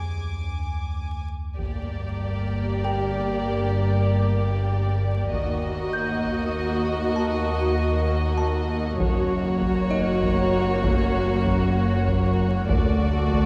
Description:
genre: cinematic, suspense film score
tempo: 97 BPM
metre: 3/4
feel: straight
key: G harmonic minor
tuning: A4 = 439 Hz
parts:
  - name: deep rumbling drone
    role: drone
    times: 0.0-13.5 s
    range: F#1 to Eb2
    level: -35 LUFS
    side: equal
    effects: built-in reverb
  - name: warm symphonic violin section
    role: texture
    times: 0.0-1.2 s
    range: Ab5 to D6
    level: -42 LUFS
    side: equal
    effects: none
  - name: warm symphonic violin section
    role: melody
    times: 1.6-13.5 s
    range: C#5 to Eb5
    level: -35 LUFS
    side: equal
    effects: none
  - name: warm chamber violin section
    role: second line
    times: 1.6-13.5 s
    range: Gb4 to G4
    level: -32 LUFS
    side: equal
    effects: none
  - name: dark symphonic viola section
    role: accompaniment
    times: 1.6-13.5 s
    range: A3 to Bb3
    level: -34 LUFS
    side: equal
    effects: none
  - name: warbly tape-like pad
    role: sustained chords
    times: 1.6-13.5 s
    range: Gb4 to G5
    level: -33 LUFS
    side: equal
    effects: chorus, built-in reverb, phaser
  - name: rich symphonic cello section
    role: bass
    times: 1.6-13.5 s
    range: D2 to G2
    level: -32 LUFS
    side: equal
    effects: none
  - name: warm symphonic double bass section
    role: bass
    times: 1.6-13.5 s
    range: F#1 to Eb2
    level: -28 LUFS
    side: equal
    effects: none
  - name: solo taiko drums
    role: drums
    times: 1.6-13.5 s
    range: none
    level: -31 LUFS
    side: equal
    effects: none
  - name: music box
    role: texture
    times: 2.8-11.7 s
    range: Eb4 to G6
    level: -36 LUFS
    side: equal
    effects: none
room: wet church reverb, RT60 3.0 s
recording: recorded in a church or concert hall, vinyl crackle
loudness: -24 LUFS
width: mono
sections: 0.0-1.6 A section; 1.6-13.5 B section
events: break 0.0-1.6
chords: 0.0 N.C.; 1.6 Gm; 5.3 Ebm; 9.0 F#; 12.7 D

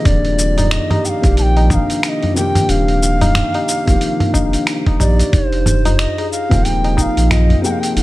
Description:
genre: organic downtempo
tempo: 91 BPM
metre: 4/4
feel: swing 59% on 16ths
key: unclear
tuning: A4 = 440 Hz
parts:
  - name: bright reedy bass bansuri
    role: melody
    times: 0.0-8.0 s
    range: C5 to A5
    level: -21 LUFS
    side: right 1 dB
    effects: digital delay
  - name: felt-muted upright piano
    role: accompaniment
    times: 0.0-8.0 s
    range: C3 to G5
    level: -22 LUFS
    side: left 2 dB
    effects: sidechain pumping, digital delay
  - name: steel tongue drum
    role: arpeggios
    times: 0.1-8.0 s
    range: D4 to Ab4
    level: -22 LUFS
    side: left 1 dB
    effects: digital delay
  - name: warm sub bass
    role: bass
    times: 0.1-8.0 s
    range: Eb1 to Bb1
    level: -15 LUFS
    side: equal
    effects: sidechain pumping
  - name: dusty soul sampler-style drum kit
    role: drums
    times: 0.1-8.0 s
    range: cabasa, finger snaps, hi-hat, toms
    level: -20 LUFS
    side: right 1 dB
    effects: overdrive, small room ambience
  - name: electronic kick drum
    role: drums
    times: 0.1-7.1 s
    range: none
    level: -15 LUFS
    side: equal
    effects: overdrive, small room ambience
  - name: tabla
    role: percussion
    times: 0.6-7.6 s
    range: none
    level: -22 LUFS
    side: left 2 dB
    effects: none
room: studio reverb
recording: none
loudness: -12 LUFS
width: side -18 dB against mid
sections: 0.0-8.0 A section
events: none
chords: 0.1 Eb; 5.3 F7(no3)

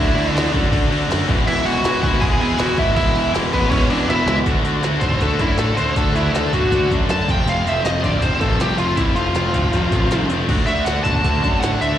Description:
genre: punk rock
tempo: 159 BPM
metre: 4/4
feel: straight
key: unclear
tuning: A4 = 440 Hz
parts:
  - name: bluesy overdriven lead guitar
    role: melody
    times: 0.0-12.0 s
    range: B3 to A5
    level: -21 LUFS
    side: equal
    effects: distortion, slapback echo
  - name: cranked stack guitar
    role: riff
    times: 0.0-12.0 s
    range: D3 to F#4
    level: -22 LUFS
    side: left 9 dB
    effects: overdrive, slapback echo
  - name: distorted electric guitar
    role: riff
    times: 0.0-12.0 s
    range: E2 to D4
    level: -24 LUFS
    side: right 10 dB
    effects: overdrive
  - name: fuzz picked electric bass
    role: bass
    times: 0.0-11.9 s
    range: E1 to D3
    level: -22 LUFS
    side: equal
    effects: overdrive
  - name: minimal click drum kit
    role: drums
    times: 0.2-11.9 s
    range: crash cymbal, hi-hat, kick drum, snare drum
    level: -22 LUFS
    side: equal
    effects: none
room: digital ambience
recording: live gig heard through the venue's PA, recital hall reverb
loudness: -16 LUFS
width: side -11 dB against mid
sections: 0.0-4.5 A section; 4.5-12.0 B section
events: drum fill 4.1-4.5; lead electric guitar solo 4.5-12.0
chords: 0.0 D; 1.3 E; 4.5 D; 7.3 F; 10.5 D

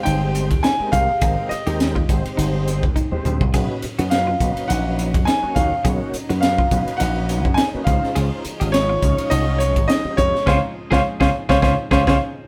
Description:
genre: electric jazz fusion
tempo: 104 BPM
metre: 4/4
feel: swing 55% on 16ths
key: unclear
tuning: A4 = 440 Hz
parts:
  - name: bright concert grand piano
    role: melody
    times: 0.0-12.2 s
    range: C5 to Ab5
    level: -23 LUFS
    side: equal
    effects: none
  - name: tonewheel organ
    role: accompaniment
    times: 0.0-12.2 s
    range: Bb2 to Eb5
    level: -30 LUFS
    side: equal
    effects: chorus vibrato, slow rotary speaker
  - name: lush unison pad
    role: sustained chords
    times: 0.0-12.5 s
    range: F3 to G4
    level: -36 LUFS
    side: equal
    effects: none
  - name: semi-hollow electric guitar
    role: stabs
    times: 0.1-12.2 s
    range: Db4 to Ab4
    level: -30 LUFS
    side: equal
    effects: none
  - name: slap bass with an envelope filter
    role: bass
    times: 0.1-12.2 s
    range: G1 to Gb2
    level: -24 LUFS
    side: equal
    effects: none
  - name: crisp fusion drum kit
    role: drums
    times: 0.1-12.2 s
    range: hi-hat, kick drum, ride cymbal, snare drum, splash cymbal, toms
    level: -24 LUFS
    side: equal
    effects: none
room: moderate stone room reverb, RT60 1.1 s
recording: band playing live in one room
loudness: -19 LUFS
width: mono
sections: 0.0-12.5 A section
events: drum fill 3.0-3.5; band accent 10.5-12.5; tonewheel organ fill 11.6-12.5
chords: 0.0 Abmaj9; 3.5 Cbmaj9; 7.9 Dbmaj9

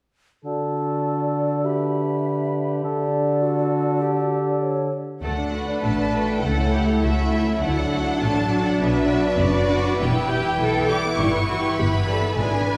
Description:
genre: quick classical-period movement for symphony orchestra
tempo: 101 BPM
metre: 2/4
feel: straight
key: D major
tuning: A4 = 436 Hz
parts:
  - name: mellow cor anglais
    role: second line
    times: 0.4-4.9 s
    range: A4 to B4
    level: -32 LUFS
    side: equal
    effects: none
  - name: dark bassoon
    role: accompaniment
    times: 0.4-4.9 s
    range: D3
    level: -26 LUFS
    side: equal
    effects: none
  - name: clear clarinet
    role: second line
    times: 0.5-4.9 s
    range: F#4 to G4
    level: -29 LUFS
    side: equal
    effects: none
  - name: mellow hollow concert flute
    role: second line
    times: 0.5-4.9 s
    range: C#5 to E5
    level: -32 LUFS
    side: equal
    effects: none
  - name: warm studio violin section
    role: melody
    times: 5.2-12.8 s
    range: D5 to D6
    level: -30 LUFS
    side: equal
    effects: none
  - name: bright studio violin section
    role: second line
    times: 5.2-12.8 s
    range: G3 to B4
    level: -30 LUFS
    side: equal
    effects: none
  - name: warm studio viola section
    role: accompaniment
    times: 5.2-12.8 s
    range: E3 to E4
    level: -26 LUFS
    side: equal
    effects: none
  - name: warm chamber cello section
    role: bass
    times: 5.2-12.8 s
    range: D4 to B4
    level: -30 LUFS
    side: equal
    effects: none
  - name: warm chamber double bass section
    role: bass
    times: 5.2-12.8 s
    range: E1 to D2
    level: -27 LUFS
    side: equal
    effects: none
room: wet scoring stage reverb, RT60 1.9 s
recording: heard from further back in the room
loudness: -22 LUFS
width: mono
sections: 0.5-5.2 A section; 5.2-12.8 B section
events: none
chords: 0.5 D; 6.4 A/C#; 7.6 D; 8.8 Bm; 10.0 Em; 11.2 Em/G

